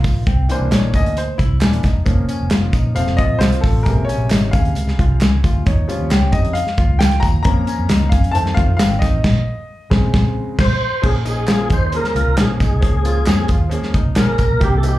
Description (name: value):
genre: uptempo 1960s-style soul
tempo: 134 BPM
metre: 4/4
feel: straight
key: Bb minor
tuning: A4 = 440 Hz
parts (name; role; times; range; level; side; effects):
- clear baby grand piano; accompaniment; 0.0-15.0 s; C3 to Bb5; -22 LUFS; left 2 dB; plate reverb, slapback echo
- hollow-body jazz guitar; riff; 0.0-15.0 s; Bb3 to Ab4; -30 LUFS; left 5 dB; slapback echo
- vintage muted fingered electric bass; bass; 0.0-15.0 s; Eb1 to Gb2; -18 LUFS; equal; none
- natural country drum kit; drums; 0.0-14.9 s; crash cymbal, hi-hat, kick drum, snare drum; -17 LUFS; equal; none
- tambourine and handclaps; percussion; 0.0-14.9 s; none; -33 LUFS; right 2 dB; slapback echo
- tonewheel organ; melody; 10.6-15.0 s; G4 to C5; -21 LUFS; right 1 dB; overdrive, chorus vibrato, slow rotary speaker, plate reverb, slapback echo
room: light reverb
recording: live gig heard through the venue's PA, club reverb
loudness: -14 LUFS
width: side -16 dB against mid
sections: 0.0-11.0 A section; 11.0-15.0 B section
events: grand piano solo 0.0-11.0; band accent 9.2-11.0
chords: 0.3 C7; 2.1 Bbm/F; 3.0 F; 3.9 Bbm7; 5.7 Eb7; 7.5 Bbm/F; 8.3 F7; 9.2 Bbm7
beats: | 0.27 0.72 1.17 1.62 | 2.07 2.52 2.96 3.42 | 3.86 4.31 4.76 5.21 | 5.66 6.11 6.56 7.00 | 7.45 7.90 8.35 8.80 | 9.24 9.69 10.14 10.59 | 11.04 11.48 11.93 12.38 | 12.82 13.27 13.72 14.17 | 14.62